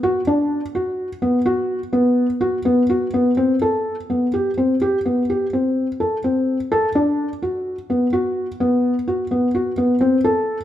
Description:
contemporary instrumental, contemporary; 127 BPM; 7/4; straight; B phrygian; A4 = 439 Hz
felt-muted upright piano; solo; 0.0-10.6 s; B3 to A4; -17 LUFS; left 1 dB
light reverb; minimal, uncompressed stereo recording; -17 LUFS; side -12 dB against mid
0.0-3.4 A section; 3.4-10.6 B section
| 0.03 0.51 0.98 1.45 1.93 2.41 2.89 | 3.37 3.85 4.33 4.81 5.29 5.76 6.24 | 6.71 7.19 7.66 8.13 8.61 9.08 9.55 | 10.02 10.48

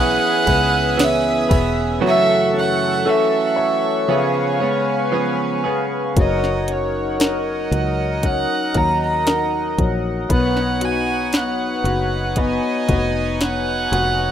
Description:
pop ballad; 58 BPM; 4/4; straight; F# major from 6.2 s; A4 = 440 Hz
dark violin; melody; 0.0-14.3 s; C#5 to A#5; -21 LUFS; right 3 dB
clear grand piano; accompaniment; 0.0-14.3 s; C#3 to C#5; -23 LUFS; left 5 dB
chorused pulse-width pad; sustained chords; 0.0-14.3 s; D#4 to D#6; -23 LUFS; left 1 dB
direct-recorded clean electric guitar; arpeggios; 0.0-6.2 s; F#2 to G#4; -22 LUFS; right 9 dB
fingered electric bass; bass; 0.0-14.3 s; E1 to D#2; -24 LUFS; equal
smooth R&B drum kit; drums; 0.5-14.2 s; hi-hat, kick drum, ride cymbal, snare drum; -19 LUFS; equal
light reverb; rough home demo mix; -16 LUFS; side -9 dB against mid
0.0-6.2 A section; 6.2-14.3 A section
0.0 E6; 2.0 F#m7; 4.1 C#7; 6.2 F#6; 10.3 Badd9
0.99 | 2.02 3.06 4.09 5.13 | 6.16 7.20 8.23 9.27 | 10.30 11.34 12.37 13.40

